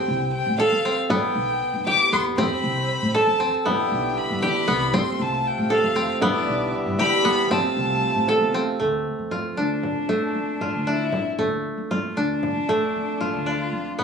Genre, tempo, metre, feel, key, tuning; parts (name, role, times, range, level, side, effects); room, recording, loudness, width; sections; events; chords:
contemporary instrumental, chamber music in an uneven meter; 233 BPM (eighths); 5/8; straight; D dorian; A4 = 439 Hz
warm violin; melody; 0.0-13.9 s; D4 to D6; -25 LUFS; left 3 dB
koto; arpeggios; 0.0-14.0 s; A3 to A4; -23 LUFS; right 1 dB
upright bass; bass; 0.1-14.0 s; B1 to E3; -30 LUFS; equal
frame drum; percussion; 0.6-14.0 s; -29 LUFS; equal
pedal harmonium; sustained chords; 3.7-8.8 s; C3 to F4; -28 LUFS; left 1 dB
moderate studio reverb, RT60 1.0 s; recorded on a phone in the room, club reverb; -20 LUFS; side -6 dB against mid
0.0-8.8 A section; 8.8-14.0 B section
0.0 F; 1.1 Em; 2.4 F; 3.7 Em7; 4.9 F; 6.2 Em7; 7.5 F; 8.8 Dm